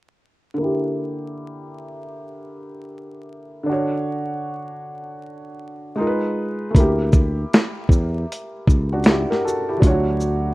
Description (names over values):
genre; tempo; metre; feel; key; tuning
lo-fi hip hop; 78 BPM; 4/4; swing 65% on 16ths; unclear; A4 = 441 Hz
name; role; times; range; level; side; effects
felt-muted upright piano; accompaniment; 0.5-10.5 s; D3 to C#5; -24 LUFS; equal; low-pass filter
dusty soul sampler-style drum kit; drums; 6.7-10.4 s; hi-hat, kick drum, shaker, snare drum; -15 LUFS; equal; none
sustaining fretless electric bass; bass; 6.8-10.5 s; C#2 to E2; -21 LUFS; equal; none
room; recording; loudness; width
digital ambience; rough home demo mix, vinyl crackle; -18 LUFS; side -20 dB against mid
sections
0.6-6.7 A section; 6.7-10.5 B section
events
filter sweep on felt piano 0.6-6.7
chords
0.6 Gm6/D; 3.7 Dmaj7; 6.0 G#m6; 6.7 Gm6/D; 9.8 Dmaj7